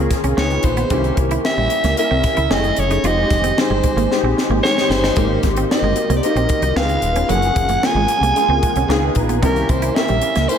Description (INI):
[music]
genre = polished 1980s jazz-funk pop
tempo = 113 BPM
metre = 4/4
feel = straight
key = unclear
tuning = A4 = 437 Hz
[part]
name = growling soprano saxophone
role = melody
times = 0.0-10.6 s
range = Bb4 to Ab5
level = -20 LUFS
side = right 1 dB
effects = slapback echo, tape echo
[part]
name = warm concert grand piano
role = accompaniment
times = 0.0-10.6 s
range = F3 to Bb5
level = -20 LUFS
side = left 2 dB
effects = ensemble chorus, slapback echo
[part]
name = semi-hollow electric guitar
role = riff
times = 0.0-10.5 s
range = Gb3 to F4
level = -25 LUFS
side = right 6 dB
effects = lush chorus, slapback echo
[part]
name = woody fretless electric bass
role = bass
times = 0.0-10.5 s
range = Eb1 to Db2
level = -20 LUFS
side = equal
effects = none
[part]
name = crisp fusion drum kit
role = drums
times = 0.1-10.6 s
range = hi-hat, kick drum, snare drum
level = -22 LUFS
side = left 1 dB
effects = none
[sound]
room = moderate lush hall reverb, RT60 2.6 s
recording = big arena sound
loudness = -14 LUFS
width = side -8 dB against mid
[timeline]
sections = 0.0-10.6 A section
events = drum fill 4.1-5.2; grand piano fill 8.4-9.4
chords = 0.4 Db9; 0.9 C7b9; 2.5 Gbm7; 3.0 Fm7; 5.2 Abmaj9; 6.8 Db9; 7.3 Gbmaj9; 8.9 Db9; 9.4 C7b9